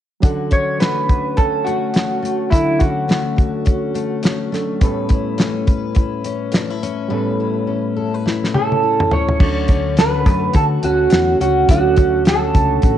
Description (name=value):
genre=indie pop, bedroom pop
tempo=105 BPM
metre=4/4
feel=swing 60% on 16ths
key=D major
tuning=A4 = 442 Hz
part: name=picked steel-string acoustic guitar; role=accompaniment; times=0.2-13.0 s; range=A2 to B4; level=-22 LUFS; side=left 6 dB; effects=wide subtle chorus, warbly pitch drift, cassette tape
part: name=reed electric piano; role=accompaniment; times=0.2-13.0 s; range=F#3 to A4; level=-28 LUFS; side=right 7 dB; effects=cassette tape
part: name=damped 70s drum kit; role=drums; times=0.2-13.0 s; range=crash cymbal, hi-hat, kick drum, snare drum, toms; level=-16 LUFS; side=equal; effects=cassette tape
part: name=electric guitar through a small old amp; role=melody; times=0.5-4.5, 8.5-13.0 s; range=E4 to C#5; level=-18 LUFS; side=right 3 dB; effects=lush chorus
part: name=hollow-body short-scale fingered electric bass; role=bass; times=9.4-13.0 s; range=A1 to D3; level=-21 LUFS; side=equal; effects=none
room=light reverb, small room reverb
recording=home recording on cassette, nothing above 10.7 kHz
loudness=-15 LUFS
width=side -11 dB against mid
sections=0.2-9.4 A section; 9.4-13.0 B section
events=drum fill 8.3-9.4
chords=0.2 Dmaj7; 4.8 A9; 9.4 Dmaj7